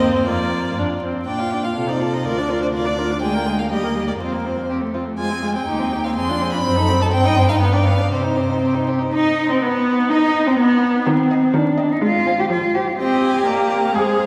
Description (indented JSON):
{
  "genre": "quick classical-period movement for string quartet",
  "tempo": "124 BPM",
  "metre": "2/4",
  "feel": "straight",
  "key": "Bb major, C minor from 5.2 s",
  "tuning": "A4 = 440 Hz",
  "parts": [
    { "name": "clear violin", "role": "melody", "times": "0.0-14.3 s", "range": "B3 to C6", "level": "-28 LUFS", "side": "equal", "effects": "none" },
    { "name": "clear violin", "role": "second line", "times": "0.0-14.3 s", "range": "B3 to F5", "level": "-29 LUFS", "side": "equal", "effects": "none" },
    { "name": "rich viola", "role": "accompaniment", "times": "0.0-14.3 s", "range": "Eb3 to F4", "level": "-24 LUFS", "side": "equal", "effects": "none" },
    { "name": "warm cello", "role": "bass", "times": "0.0-14.3 s", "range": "D2 to Ab4", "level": "-22 LUFS", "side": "equal", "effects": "none" }
  ],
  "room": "wet church reverb, RT60 3.1 s",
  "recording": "recorded in a church or concert hall, vinyl crackle",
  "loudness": "-19 LUFS",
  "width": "mono",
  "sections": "0.0-1.3 A section; 1.3-9.1 B section; 9.1-14.3 C section",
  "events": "none",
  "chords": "0.3 Bb/F; 0.8 F5; 1.3 Bb; 1.8 F7/C; 2.3 Bb/D; 3.2 Bb7/D; 3.7 Eb; 4.2 Fsus4; 4.7 F; 5.2 Fm; 5.7 Cm/Eb; 6.2 Dm7b5/F; 6.6 F#dim7; 7.1 Cm/G; 7.6 G7; 8.1 Cm; 9.6 N.C.; 10.1 Cm/Eb; 10.6 N.C.; 11.1 Cm/Eb; 12.0 Fm/Ab; 12.5 Fm; 13.0 Cm; 13.5 Gm/Bb"
}